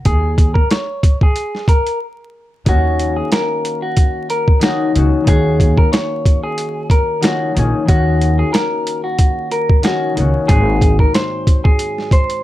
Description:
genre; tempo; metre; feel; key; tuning
hip hop, boom-bap hip-hop; 92 BPM; 4/4; swing 55% on 16ths; Eb dorian; A4 = 441 Hz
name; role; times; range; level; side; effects
clean electric guitar; melody; 0.1-12.4 s; Gb4 to Db5; -20 LUFS; equal; high-pass filter, low-pass filter, slapback echo, plate reverb
upright bass; bass; 0.1-11.0 s; Ab1 to Eb2; -16 LUFS; equal; none
boom bap sampler-style drum kit; drums; 0.1-12.4 s; hi-hat, kick drum, snare drum; -13 LUFS; equal; none
concert harp; accompaniment; 2.7-12.4 s; Ab2 to Ab4; -20 LUFS; left 4 dB; cassette tape, high-pass filter, low-pass filter
room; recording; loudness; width
light reverb; vinyl crackle; -13 LUFS; side -14 dB against mid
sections
0.0-12.4 A section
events
break 2.0-2.7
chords
0.0 Gbsus2 (rootless); 2.7 Ebm7; 10.5 Ab7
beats
| 0.06 0.71 1.36 2.02 | 2.67 3.32 3.97 4.62 | 5.28 5.93 6.58 7.23 | 7.88 8.54 9.19 9.84 | 10.49 11.14 11.80

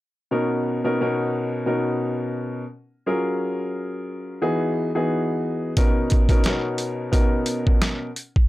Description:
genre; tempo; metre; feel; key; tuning
hip hop, boom-bap hip-hop; 88 BPM; 4/4; swing 54% on 16ths; B major; A4 = 440 Hz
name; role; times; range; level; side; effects
dark upright piano; accompaniment; 0.3-8.1 s; B2 to A#4; -23 LUFS; left 1 dB; cassette tape, high-pass filter, low-pass filter
boom bap sampler-style drum kit; drums; 5.8-8.5 s; hi-hat, kick drum, snare drum; -19 LUFS; equal; none
room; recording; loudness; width
light reverb; none; -21 LUFS; side -17 dB against mid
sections
0.3-8.5 A section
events
none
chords
0.3 Bmaj9; 3.0 F#maj9; 4.4 Emaj9; 5.8 Bmaj9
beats
| 0.32 1.00 1.68 2.36 | 3.04 3.73 4.41 5.09 | 5.77 6.45 7.13 7.82

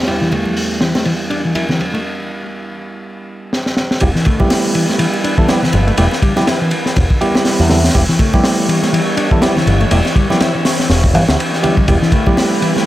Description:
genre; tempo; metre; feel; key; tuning
breakbeat, breaks; 122 BPM; 4/4; swing 58% on 16ths; E dorian; A4 = 440 Hz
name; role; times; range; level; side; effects
lush unison pad; sustained chords; 0.0-12.9 s; E2 to C#5; -24 LUFS; left 1 dB; chorus, sidechain pumping
tine electric piano; stabs; 0.0-12.9 s; G3 to B4; -19 LUFS; right 2 dB; ping-pong delay
crunchy breakbeat drum kit; drums; 0.0-12.9 s; hi-hat, kick drum, ride cymbal, snare drum; -16 LUFS; equal; low-pass filter on kick, low-pass filter on cymbals, low-pass filter on hats, low-pass filter on snare, low-pass filter on room
bongos and congas; percussion; 0.1-12.8 s; none; -25 LUFS; right 1 dB; none
mellow electric guitar; riff; 0.2-12.9 s; E3 to E4; -19 LUFS; left 2 dB; low-pass filter, ping-pong delay
picked electric bass with an envelope filter; bass; 4.0-12.0 s; E1 to E2; -14 LUFS; equal; none
room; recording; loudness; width
little or no reverb; none; -12 LUFS; side -15 dB against mid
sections
0.0-4.0 A section; 4.0-12.9 B section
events
filter sweep on clean electric guitar 0.0-4.0; filter sweep on analog synth pad 0.0-4.0; break 2.0-4.0; drum fill 3.5-4.0; drop 4.0-12.9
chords
0.0 Em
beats
| 0.08 0.57 1.06 1.55 | 2.04 2.54 3.03 3.52 | 4.01 4.50 5.00 5.49 | 5.98 6.47 6.96 7.45 | 7.95 8.44 8.93 9.42 | 9.91 10.40 10.90 11.39 | 11.88 12.37

